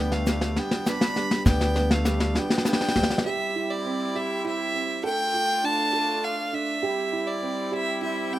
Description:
indie folk with a building arrangement; 101 BPM; 3/4; straight; C major; A4 = 440 Hz
rich fiddle; melody; 0.0-8.4 s; D5 to B5; -27 LUFS; equal
warm trumpet; second line; 0.0-2.9 s; A3 to D4; -39 LUFS; left 1 dB
dark concert grand piano; accompaniment; 0.0-3.3 s; D2 to F5; -35 LUFS; left 1 dB
picked twelve-string acoustic guitar; accompaniment; 0.0-3.3 s; D3 to B4; -34 LUFS; left 2 dB
dark upright piano; arpeggios; 0.0-8.4 s; G3 to A4; -31 LUFS; right 5 dB; tape echo
upright bass; bass; 0.0-3.1 s; D2; -26 LUFS; equal
vintage brush drum kit; drums; 0.1-3.3 s; hi-hat, kick drum, snare drum; -24 LUFS; left 1 dB
tube shaker; percussion; 0.1-3.2 s; -46 LUFS; right 2 dB
rich chamber string section; sustained chords; 3.3-8.4 s; G3 to F4; -33 LUFS; left 1 dB
little or no reverb; rough home demo mix; -22 LUFS; side -14 dB against mid
0.0-3.3 A section; 3.3-8.4 B section
build-up 0.0-3.3; drum fill 0.0-3.3
0.0 G/D; 3.3 C; 5.0 Dm; 6.8 C

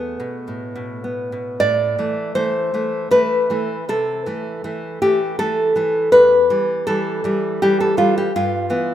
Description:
romantic piece for solo classical guitar; 80 BPM; 3/4; uneven beats, rubato; A minor; A4 = 440 Hz
nylon-string guitar; solo; 0.0-8.9 s; E2 to D5; -16 LUFS; equal
moderate scoring stage reverb, RT60 1.9 s; minimal, uncompressed stereo recording; -16 LUFS; side -11 dB against mid
0.0-1.6 A section; 1.6-8.9 B section
0.0 E; 1.6 Am; 3.9 Am/C; 6.1 Em; 8.3 Em/G

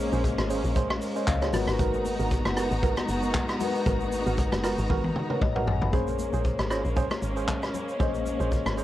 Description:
amapiano; 116 BPM; 4/4; swing 55% on 16ths; Bb phrygian; A4 = 441 Hz
mellow tine electric piano; accompaniment; 0.0-8.8 s; Ab3 to Cb6; -32 LUFS; left 8 dB; medium stereo tremolo, cassette tape
warm studio string section; sustained chords; 0.0-8.8 s; Ab3 to Bb5; -32 LUFS; equal; cassette tape
deep log drum bass; bass; 0.0-8.8 s; Gb1 to Db2; -30 LUFS; equal
percussive organ stab; stabs; 0.1-8.8 s; Cb4 to C5; -34 LUFS; right 7 dB; chorus, cassette tape, analog delay
vintage drum kit; drums; 0.1-8.8 s; handclaps, hi-hat, kick drum, rim click, shaker, toms; -29 LUFS; equal; cassette tape
congas; percussion; 0.4-8.8 s; -39 LUFS; left 7 dB
light reverb, studio reverb; home recording on cassette; -24 LUFS; side -14 dB against mid
0.0-5.9 A section; 5.9-8.8 B section
drop 0.0-5.9; drum fill 4.9-5.9
0.0 Bbm9; 1.5 Abm9; 5.9 Bbm9

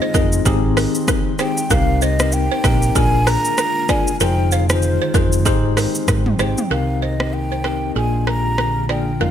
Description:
afrobeats; 96 BPM; 4/4; swing 58% on 16ths; C minor; A4 = 440 Hz
breathy mellow concert flute; melody; 0.0-9.3 s; C5 to Bb5; -23 LUFS; equal; tape echo
bell-like tine electric piano; accompaniment; 0.0-9.3 s; Ab3 to C5; -22 LUFS; left 6 dB; fast stereo tremolo
glassy FM pad; sustained chords; 0.0-9.3 s; Eb3 to G5; -27 LUFS; right 1 dB; ensemble chorus, built-in reverb
balafon; riff; 0.0-9.3 s; Ab4 to D5; -25 LUFS; right 6 dB
hollow-body short-scale fingered electric bass; bass; 0.1-9.3 s; F1 to Ab2; -20 LUFS; right 1 dB
deep house drum kit; drums; 0.1-9.1 s; hi-hat, kick drum, rim click, shaker, toms; -20 LUFS; right 1 dB; overdrive
light reverb; -15 LUFS; side -10 dB against mid
0.0-6.7 A section; 6.7-9.3 B section
0.5 Abmaj7; 1.7 Cm7; 3.0 Bb7; 4.2 Fm7; 5.5 Abmaj7; 6.7 Cm7; 8.0 Bb7

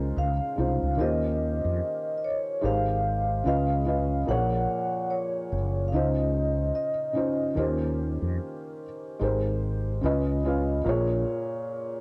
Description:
lo-fi hip hop; 73 BPM; 4/4; swing 59% on 16ths; A4 = 441 Hz
vibraphone with soft mallets; melody; 0.0-7.6 s; Bb4 to Gb5; -32 LUFS; equal; low-pass filter, cassette tape, plate reverb
felt-muted upright piano; accompaniment; 0.0-12.0 s; Bb2 to F5; -31 LUFS; equal; cassette tape, low-pass filter, plate reverb
mellow fretless electric bass; bass; 0.0-11.2 s; Gb1 to F2; -30 LUFS; equal; tube saturation, ensemble chorus
light reverb; home recording on cassette; -27 LUFS; mono
0.0-12.0 A section
0.0 Dbmaj9; 1.0 Eb13; 2.6 Abmaj9; 3.4 Db9; 4.3 Gbmaj7/Bb; 5.9 Dbmaj9; 7.6 Eb13; 9.2 Abmaj9; 10.0 Db9; 10.8 Gbmaj7/Bb (rootless)

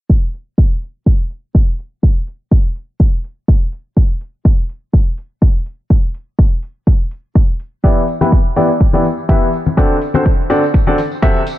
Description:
piano house; 124 BPM; 4/4; swing 54% on 16ths; A4 = 440 Hz
electronic kick drum; drums; 0.1-11.3 s; -11 LUFS; equal
electronic hi-hat; drums; 0.3-11.6 s; -46 LUFS; right 4 dB
clear upright piano; riff; 7.8-11.4 s; C3 to E5; -14 LUFS; left 1 dB; sidechain pumping, dub echo
tambourine and congas; percussion; 7.8-11.6 s; -21 LUFS; left 4 dB
little or no reverb; low-pass filter; -12 LUFS; side -15 dB against mid
0.1-11.6 A section
filter sweep 0.1-11.6
0.1 N.C.; 7.8 Em7; 9.8 D7

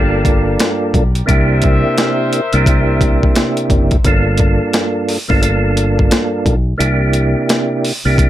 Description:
hip hop, boom-bap hip-hop; 87 BPM; 4/4; swing 63% on 16ths; G dorian; A4 = 440 Hz
percussive tonewheel organ; accompaniment; 0.0-8.3 s; G2 to A4; -16 LUFS; right 2 dB; overdrive, chorus vibrato, fast rotary speaker, cassette tape, high-pass filter, low-pass filter
clear horn section; stabs; 0.0-3.7 s; G4 to E5; -22 LUFS; left 4 dB; high-pass filter, low-pass filter, ping-pong delay
fingered electric bass; bass; 0.0-8.3 s; F#1 to C2; -16 LUFS; equal
boom bap sampler-style drum kit; drums; 0.2-8.3 s; hi-hat, kick drum, snare drum; -15 LUFS; equal; overdrive
little or no reverb; -12 LUFS; side -13 dB against mid
0.0-4.0 A section; 4.0-8.3 B section
0.0 Gm7; 1.3 C7; 4.0 Gm7; 6.8 C7

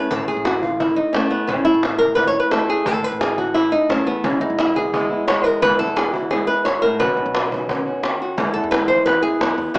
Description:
flamenco; 174 BPM; 4/4; straight; E major; A4 = 438 Hz
flamenco guitar; melody; 0.0-9.8 s; E2 to C#5; -17 LUFS; equal
upright bass; bass; 0.1-9.8 s; E1 to F#2; -34 LUFS; equal
cajon; percussion; 0.1-9.8 s; -23 LUFS; equal
flamenco guitar; stabs; 4.2-9.8 s; B2 to F#4; -27 LUFS; right 1 dB
moderate stone room reverb, RT60 1.1 s; small speaker sound; -16 LUFS; side -25 dB against mid
0.0-9.8 A section
nylon-string guitar solo 0.0-9.8
0.0 Aadd9; 4.2 E; 7.0 Badd9; 8.4 E

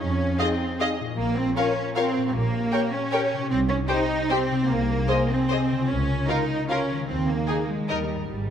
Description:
classical, orchestral ballroom waltz; 152 BPM; 3/4; uneven beats, rubato; Ab major; A4 = 440 Hz
concert harp; arpeggios; 0.0-8.5 s; Ab2 to Eb5; -30 LUFS; left 6 dB
rich symphonic cello section; bass; 0.0-8.5 s; G3 to Eb4; -26 LUFS; right 2 dB
warm studio double bass section; bass; 0.0-8.5 s; Ab1 to F2; -30 LUFS; right 2 dB
warm symphonic violin section; melody; 0.4-8.0 s; Eb5 to Ab5; -32 LUFS; left 4 dB
clear studio violin section; second line; 0.4-8.0 s; Ab4 to Eb5; -32 LUFS; equal
warm symphonic viola section; accompaniment; 0.4-8.0 s; Eb4 to Bb4; -34 LUFS; right 1 dB
dark French horn section; sustained chords; 0.4-8.0 s; Eb4 to Db5; -31 LUFS; left 3 dB
moderate scoring stage reverb, RT60 1.7 s; -22 LUFS; side -8 dB against mid
0.0-8.5 A section
0.0 Fm7; 1.2 Bbm; 2.3 Gdim/Bb; 3.5 Cm; 4.7 Ab/C; 5.9 Bbm/Db; 7.1 Ab/Eb; 7.9 Eb

